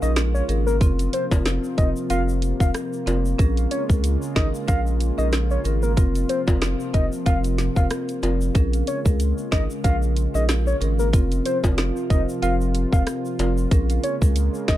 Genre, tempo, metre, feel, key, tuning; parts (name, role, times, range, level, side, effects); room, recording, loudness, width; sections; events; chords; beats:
dancehall; 93 BPM; 4/4; swing 56% on 16ths; Bb minor; A4 = 443 Hz
soft octave-layered synth lead; melody; 0.0-14.8 s; Bb4 to F5; -28 LUFS; left 1 dB; chorus, ping-pong delay
marimba with medium mallets; accompaniment; 0.0-14.8 s; C4 to Bb4; -28 LUFS; equal
warm analog pad; sustained chords; 0.0-14.8 s; C3 to F4; -32 LUFS; right 1 dB; chorus, sidechain pumping
saturated sub bass; bass; 0.0-14.8 s; F1 to Db2; -23 LUFS; equal
tube shaker and timbales; percussion; 0.0-14.8 s; -35 LUFS; left 2 dB
island pop drum kit; drums; 0.2-14.8 s; hi-hat, kick drum, rim click, snare drum; -20 LUFS; equal
little or no reverb; dark, warm production; -19 LUFS; side -14 dB against mid
0.0-14.8 A section
0.0 Bbm7; 0.8 Fsus4; 3.4 Bbm7; 6.0 Fsus4; 8.6 Bbm7; 11.1 Fsus4; 13.7 Bbm7
0.17 | 0.81 1.46 2.10 2.75 | 3.39 4.04 4.68 5.33 | 5.97 6.62 7.26 7.91 | 8.55 9.20 9.84 10.49 | 11.13 11.78 12.42 13.07 | 13.71 14.36